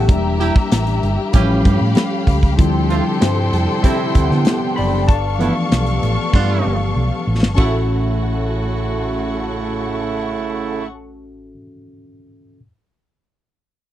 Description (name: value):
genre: lush 1970s-style soul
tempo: 96 BPM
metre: 4/4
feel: straight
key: unclear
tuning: A4 = 440 Hz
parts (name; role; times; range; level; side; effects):
- warm symphonic string section; second line; 0.0-10.8 s; G4 to C#6; -25 LUFS; left 2 dB; none
- tine electric piano; accompaniment; 0.0-12.6 s; E3 to B5; -22 LUFS; left 2 dB; overdrive, wide subtle chorus
- warm studio string section; sustained chords; 0.0-10.8 s; A2 to G4; -28 LUFS; left 1 dB; none
- hollow-body short-scale fingered electric bass; bass; 0.0-11.5 s; E1 to D3; -19 LUFS; equal; none
- modern studio drum kit; drums; 0.1-7.7 s; crash cymbal, hi-hat, kick drum, snare drum; -14 LUFS; equal; none
- warm horn section; stabs; 0.4-10.8 s; C#3 to G4; -23 LUFS; right 6 dB; none
room: little or no reverb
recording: dry, close 1970s-style studio recording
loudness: -15 LUFS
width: side -12 dB against mid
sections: 0.0-7.6 A section; 7.6-10.1 B section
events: tine electric piano solo 0.0-7.6; drum fill 6.3-7.6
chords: 0.1 Em7b5; 1.3 A7b13; 2.6 Dm11; 5.1 G13; 7.6 A6